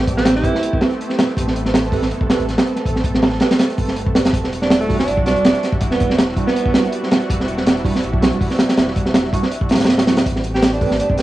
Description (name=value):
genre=drum and bass, jungle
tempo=162 BPM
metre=4/4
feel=swing 54% on 16ths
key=A minor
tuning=A4 = 436 Hz
part: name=lush unison pad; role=sustained chords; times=0.0-11.2 s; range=G3 to A4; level=-24 LUFS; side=equal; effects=chorus, vintage 12-bit sampler grit, cassette tape
part: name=saturated sub bass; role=bass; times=0.0-11.2 s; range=D1 to B1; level=-25 LUFS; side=equal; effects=none
part: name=crunchy breakbeat drum kit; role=drums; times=0.1-11.2 s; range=hi-hat, kick drum, snare drum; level=-16 LUFS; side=equal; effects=cassette tape
part: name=clear alto saxophone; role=melody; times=0.2-0.9, 4.6-7.0, 10.5-11.2 s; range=A3 to G4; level=-22 LUFS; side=right 2 dB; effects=vintage 12-bit sampler grit, cassette tape, dub echo
part: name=tine electric piano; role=stabs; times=0.4-11.2 s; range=G3 to B4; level=-26 LUFS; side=right 8 dB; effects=medium stereo tremolo, vintage 12-bit sampler grit, cassette tape, dub echo
part: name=electronic shaker and snare drum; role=drums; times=10.3-11.2 s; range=none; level=-35 LUFS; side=left 1 dB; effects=high-pass filter on perc, cassette tape, high-pass filter on snare, high-pass filter on hats, high-pass filter on room
room=light reverb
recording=home recording on cassette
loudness=-14 LUFS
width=side -15 dB against mid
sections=0.0-11.2 A section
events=none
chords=0.0 Am9; 4.3 Em9; 10.3 Am9